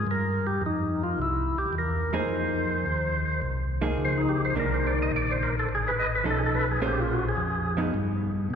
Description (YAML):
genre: jazz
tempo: 107 BPM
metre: 4/4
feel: swing 69% on 8ths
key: unclear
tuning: A4 = 440 Hz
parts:
  - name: percussive tonewheel organ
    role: melody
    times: 0.0-7.8 s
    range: Eb4 to Eb5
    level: -28 LUFS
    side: equal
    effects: slow rotary speaker
  - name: mellow tonewheel organ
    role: bass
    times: 0.0-8.6 s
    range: A1 to B2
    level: -28 LUFS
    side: equal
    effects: slow rotary speaker
  - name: vintage hollow-body jazz guitar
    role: accompaniment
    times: 2.1-7.9 s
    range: Eb3 to C5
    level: -30 LUFS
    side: right 1 dB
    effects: none
room: wet church reverb, RT60 3.8 s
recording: recorded in a church or concert hall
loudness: -24 LUFS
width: side -7 dB against mid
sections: 0.0-8.6 A section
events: tonewheel organ solo 0.0-8.6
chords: 0.1 F9sus4; 1.2 C7; 2.3 Fm7; 4.6 Cm9; 5.7 Faug7; 6.8 Bbm9; 7.9 N.C.